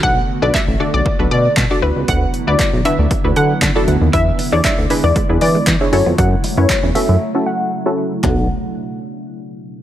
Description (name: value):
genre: dance-pop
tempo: 117 BPM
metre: 4/4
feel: straight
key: B dorian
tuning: A4 = 440 Hz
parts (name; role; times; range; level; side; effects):
- analog pluck; melody; 0.0-8.5 s; B4 to F#5; -20 LUFS; left 1 dB; chorus, low-pass filter, digital delay
- punchy chord stab; accompaniment; 0.0-8.5 s; B3 to D5; -21 LUFS; equal; chorus, sidechain pumping, low-pass filter
- glassy FM pad; sustained chords; 0.0-8.5 s; C#3 to F#4; -24 LUFS; right 1 dB; ensemble chorus, built-in reverb, sidechain pumping, low-pass filter
- chorused synth bass; bass; 0.0-8.5 s; A1 to E3; -16 LUFS; equal; sidechain pumping
- punchy analog drum machine; drums; 0.0-8.4 s; handclaps, hi-hat, kick drum, snare drum, toms; -18 LUFS; equal; overdrive
- direct-recorded clean electric guitar; riff; 4.1-8.4 s; G#3 to F#4; -26 LUFS; right 6 dB; lush chorus, low-pass filter
- group handclap; percussion; 4.6-8.5 s; none; -30 LUFS; left 3 dB; none
room: light reverb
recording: none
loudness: -13 LUFS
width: side -12 dB against mid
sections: 0.0-8.2 A section; 8.2-9.8 B section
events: filter sweep 0.0-8.2; break 7.2-8.2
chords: 0.0 Bm7; 1.8 D69; 4.1 E7; 5.9 F#m7; 8.2 Bm7